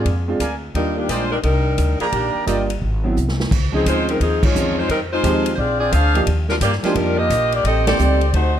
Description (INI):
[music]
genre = jazz, big band swing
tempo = 174 BPM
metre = 4/4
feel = swing 65% on 8ths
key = Eb major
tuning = A4 = 442 Hz
[part]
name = clear saxophone section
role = melody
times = 0.0-8.6 s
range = Eb3 to F5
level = -19 LUFS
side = left 1 dB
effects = plate reverb
[part]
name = bright upright piano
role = accompaniment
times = 0.0-8.2 s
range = F3 to G4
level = -23 LUFS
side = right 2 dB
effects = none
[part]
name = upright bass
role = bass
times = 0.0-8.6 s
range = G1 to G2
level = -20 LUFS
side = equal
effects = none
[part]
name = swinging big-band drum kit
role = drums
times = 0.1-8.4 s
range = crash cymbal, hi-hat, kick drum, ride cymbal, snare drum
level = -24 LUFS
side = equal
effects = none
[part]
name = clear trumpet section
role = stabs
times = 0.4-2.6 s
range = Bb4 to Bb5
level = -24 LUFS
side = right 4 dB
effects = none
[sound]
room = light reverb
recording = dark, warm production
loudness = -16 LUFS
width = side -10 dB against mid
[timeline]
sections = 0.0-3.5 A section; 3.5-8.6 B section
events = drum fill 3.2-3.5; band accent 4.4, 7.8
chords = 0.0 Bb7; 0.7 Ebmaj7; 2.8 Ab7alt; 3.5 Dbmaj9; 4.9 Fm7; 5.6 Bb9; 7.6 Am7b5